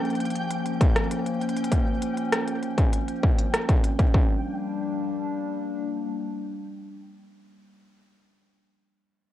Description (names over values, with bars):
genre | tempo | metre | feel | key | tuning
IDM | 99 BPM | 4/4 | straight | G minor | A4 = 440 Hz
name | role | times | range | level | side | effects
warbly tape-like pad | sustained chords | 0.0-7.3 s | F3 to D4 | -28 LUFS | left 1 dB | chorus, built-in reverb
flickering grainy texture | texture | 0.0-4.2 s | G5 | -38 LUFS | right 1 dB | built-in reverb
organic electronic drum kit | drums | 0.1-4.1 s | hi-hat, rim click | -28 LUFS | equal | cassette tape
electronic kick drum | drums | 0.8-4.3 s | none | -21 LUFS | equal | distortion, cassette tape
room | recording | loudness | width
moderate booth ambience, RT60 0.2 s | home recording on cassette | -23 LUFS | side -12 dB against mid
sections
0.0-4.1 A section; 4.1-6.6 B section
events
none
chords
0.0 Bbm; 4.1 Gm